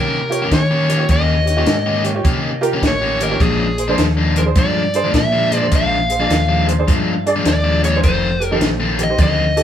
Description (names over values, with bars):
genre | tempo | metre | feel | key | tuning
electric blues shuffle | 104 BPM | 4/4 | swing 65% on 8ths | Bb mixolydian | A4 = 440 Hz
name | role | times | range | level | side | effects
overdriven slide guitar | melody | 0.0-9.6 s | Ab4 to F5 | -20 LUFS | left 1 dB | analog delay
overdriven electric guitar | riff | 0.0-9.4 s | F2 to G4 | -20 LUFS | left 3 dB | none
fingered electric bass | bass | 0.0-9.6 s | F1 to Eb3 | -20 LUFS | equal | none
honky-tonk upright piano | accompaniment | 0.3-9.6 s | D4 to Eb5 | -22 LUFS | right 4 dB | none
compact cocktail drum kit | drums | 0.3-9.6 s | hi-hat, kick drum, snare drum | -18 LUFS | equal | none
room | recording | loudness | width
moderate studio reverb, RT60 0.5 s | band playing live in one room | -14 LUFS | side -10 dB against mid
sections
0.0-9.6 A section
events
none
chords
0.0 Eb7; 3.4 Bb7; 8.0 F7